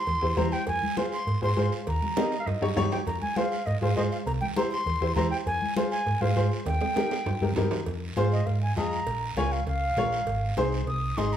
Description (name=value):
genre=latin, cumbia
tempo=200 BPM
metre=4/4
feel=straight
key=F minor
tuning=A4 = 439 Hz
part: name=concert flute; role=melody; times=0.0-11.4 s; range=Eb5 to Eb6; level=-30 LUFS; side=equal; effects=none
part: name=hollow-body short-scale fingered electric bass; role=bass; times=0.1-11.4 s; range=Ab1 to Ab2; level=-28 LUFS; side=equal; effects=none
part: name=congas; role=percussion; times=0.1-11.3 s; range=none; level=-34 LUFS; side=left 1 dB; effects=none
part: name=cowbell and timbales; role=percussion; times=0.1-11.3 s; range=none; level=-36 LUFS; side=right 5 dB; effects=none
part: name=guiro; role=percussion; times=0.1-11.4 s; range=none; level=-43 LUFS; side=right 4 dB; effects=none
part: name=clear upright piano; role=accompaniment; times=0.2-11.4 s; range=Eb4 to Eb5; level=-30 LUFS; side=left 2 dB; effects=none
part: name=growling clarinet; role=second line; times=2.2-2.8 s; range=Eb5 to F5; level=-34 LUFS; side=right 3 dB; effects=none
room=moderate large studio reverb, RT60 0.9 s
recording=band playing live in one room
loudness=-24 LUFS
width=side -10 dB against mid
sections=0.0-7.9 A section; 7.9-11.4 B section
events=drum fill 2.2-3.1, 6.7-7.9; flute solo 7.9-11.4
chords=0.0 C; 0.7 Fm; 1.9 Eb; 3.1 Fm; 4.3 C; 5.5 Fm; 6.7 Eb; 7.9 Fm; 9.1 Bbm; 10.3 Ab